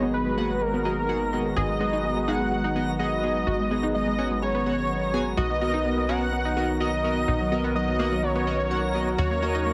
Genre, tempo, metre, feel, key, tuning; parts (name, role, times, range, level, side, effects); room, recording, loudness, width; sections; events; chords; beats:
progressive house; 126 BPM; 4/4; straight; G# minor; A4 = 440 Hz
unison lead; melody; 0.0-9.7 s; A#4 to F#5; -30 LUFS; equal; tape echo
lush unison pad; sustained chords; 0.0-9.7 s; D#3 to A#4; -32 LUFS; equal; chorus
analog pluck; arpeggios; 0.0-9.7 s; F#3 to G#4; -33 LUFS; equal; chorus, tape echo
chorused polysynth; stabs; 0.0-9.7 s; B3 to G#5; -32 LUFS; equal; tape echo
tight sequencer bass; bass; 0.0-9.7 s; G#1 to D#2; -34 LUFS; equal
electronic hi-hat and shaker; drums; 0.0-9.7 s; barely audible
backwards swelling texture; texture; 0.0-9.7 s; A#5; -43 LUFS; equal; built-in reverb
light reverb; heavily compressed radio sound; -25 LUFS; mono
0.0-9.7 A section
filter sweep on analog synth pad 0.0-9.7
0.0 G#m7; 5.4 Bmaj7; 9.2 D#m7
0.14 0.61 1.09 | 1.56 2.04 2.52 2.99 | 3.47 3.95 4.42 4.90 | 5.38 5.85 6.33 6.80 | 7.28 7.76 8.23 8.71 | 9.19 9.66